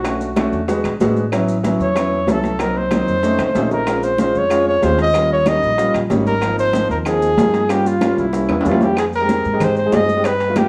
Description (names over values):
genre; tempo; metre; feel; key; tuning
Afro-Cuban jazz; 188 BPM; 4/4; straight; Ab major; A4 = 440 Hz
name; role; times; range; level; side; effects
warm trumpet; melody; 0.0-10.7 s; Fb4 to Eb5; -20 LUFS; equal; plate reverb
warm concert grand piano; accompaniment; 0.0-10.7 s; F3 to Ab4; -22 LUFS; equal; none
upright bass; bass; 0.0-10.7 s; Ab1 to Ab2; -27 LUFS; equal; none
bongos; percussion; 0.0-10.7 s; none; -30 LUFS; equal; none
congas; percussion; 0.0-10.7 s; none; -26 LUFS; equal; none
maracas; percussion; 0.0-10.7 s; none; -46 LUFS; equal; none
timbales; percussion; 0.0-10.7 s; none; -28 LUFS; equal; none
claves; percussion; 0.1-10.7 s; none; -38 LUFS; equal; none
room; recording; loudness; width
moderate large studio reverb, RT60 1.0 s; none; -17 LUFS; mono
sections
0.0-9.0 A section; 9.0-10.7 B section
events
drum fill 3.2-3.9, 8.5-9.0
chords
0.0 Bm9; 0.7 E7; 1.3 A6; 2.6 Cm7b5; 3.2 F7b13; 3.9 Bbm9; 5.1 Eb9; 6.4 Ab69; 7.7 Gm7b5; 8.3 C7b9; 9.0 Fm7